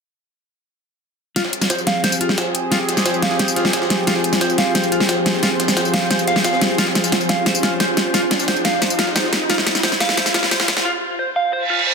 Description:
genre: dark technical drum and bass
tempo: 177 BPM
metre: 4/4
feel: straight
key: F minor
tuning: A4 = 440 Hz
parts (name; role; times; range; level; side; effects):
- sweeping resonant pad; sustained chords; 1.4-10.8 s; F3 to Ab4; -24 LUFS; right 1 dB; chorus
- clean electric guitar; arpeggios; 1.4-11.9 s; F4 to F5; -22 LUFS; equal; low-pass filter, ping-pong delay
- dubstep drum kit; drums; 1.4-10.8 s; hi-hat, snare drum, tambourine; -19 LUFS; equal; none
- jungle sampler-style drum kit; drums; 1.4-10.8 s; hi-hat, snare drum; -25 LUFS; equal; high-pass filter on hats, high-pass filter on snare, high-pass filter on room
- riser and reverse cymbal; sound effects; 5.7-11.9 s; none; -26 LUFS; right 1 dB; none
- granular cloud pad; texture; 2.3-10.9 s; F4 to C5; -25 LUFS; equal; built-in reverb
room: moderate plate reverb, RT60 1.8 s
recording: dense, heavily limited modern master, high-pass filter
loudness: -15 LUFS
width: side -5 dB against mid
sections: 1.4-11.9 A section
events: build-up 1.4-11.9; drum fill 1.4-10.9; riser 5.7-10.9; break 10.9-11.9; reverse cymbal 11.6-11.9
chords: 1.4 Fm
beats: | 1.36 1.70 2.04 2.38 | 2.72 3.06 3.40 3.73 | 4.07 4.41 4.75 5.09 | 5.43 5.77 6.11 6.45 | 6.78 7.12 7.46 7.80 | 8.14 8.48 8.82 9.16 | 9.50 9.84 10.17 10.51 | 10.85 11.19 11.53 11.87

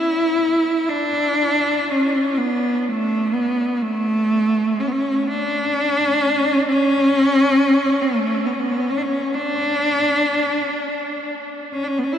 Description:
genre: celtic folk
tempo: 40-46 BPM (dotted quarters)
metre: 6/8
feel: rubato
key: unclear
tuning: A4 = 438 Hz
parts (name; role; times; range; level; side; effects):
- rich cello; solo; 0.0-12.2 s; A3 to E4; -17 LUFS; equal; tape echo
room: wet huge ambient reverb, RT60 9.0 s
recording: dreamy mix soaked in reverb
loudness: -17 LUFS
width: side -9 dB against mid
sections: 0.0-12.2 A section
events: none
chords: none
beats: | 0.91 2.40 | 3.84 5.28 | 6.67 8.01 | 9.34 10.73

